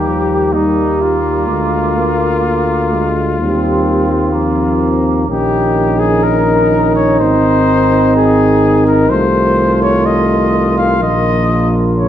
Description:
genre	classical, brass quintet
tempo	63 BPM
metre	4/4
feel	straight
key	unclear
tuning	A4 = 440 Hz
part	warm trumpet	melody	0.0-12.1 s	Eb4 to F5	-16 LUFS	left 4 dB	none
part	warm flugelhorn	second line	0.0-12.1 s	Bb3 to F4	-18 LUFS	right 4 dB	none
part	mellow trombone	accompaniment	0.0-12.1 s	Db3 to Bb3	-20 LUFS	right 2 dB	none
part	warm French horn	accompaniment	0.0-12.1 s	G3 to Db4	-18 LUFS	left 2 dB	none
part	mellow bass trombone	bass	0.0-12.1 s	Ab1 to Eb2	-16 LUFS	right 1 dB	none
room	wet stone room reverb, RT60 1.0 s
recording	dark, warm production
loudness	-10 LUFS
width	side -10 dB against mid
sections	0.0-12.1 A section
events	none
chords	0.0 Eb; 1.5 Bb7/D; 3.4 Eb; 5.3 Eb5/Bb; 7.2 Ab; 9.1 F7/C; 11.0 Bb5

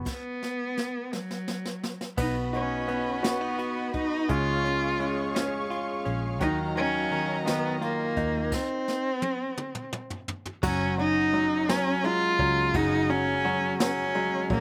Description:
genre	six-eight pop ballad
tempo	57 BPM (dotted quarters)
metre	6/8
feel	straight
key	F# major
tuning	A4 = 439 Hz
part	clear grand piano	accompaniment	0.0-14.6 s	C#3 to F#4	-34 LUFS	equal	none
part	vintage muted fingered electric bass	bass	0.0-14.6 s	F#1 to D#2	-36 LUFS	equal	none
part	rich cello	melody	0.1-14.6 s	F#3 to E#4	-30 LUFS	equal	none
part	jazz brush drum kit	drums	0.1-14.6 s	crash cymbal, hi-hat, kick drum, ride cymbal, snare drum, toms	-35 LUFS	equal	none
part	rich studio string section	sustained chords	2.2-8.5 s	F#3 to C#6	-39 LUFS	equal	none
part	direct-recorded clean electric guitar	arpeggios	2.2-14.6 s	F#3 to F#4	-35 LUFS	equal	none
room	little or no reverb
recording	recorded outdoors, with no room sound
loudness	-28 LUFS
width	mono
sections	0.0-2.2 A section; 2.2-10.6 B section; 10.6-14.6 C section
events	drum fill 0.1-2.2, 8.5-10.6; stop 0.1-2.2, 8.5-10.6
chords	0.0 B5; 2.2 B; 4.3 C#; 6.4 D#madd9; 8.5 N.C.; 10.6 F#sus2

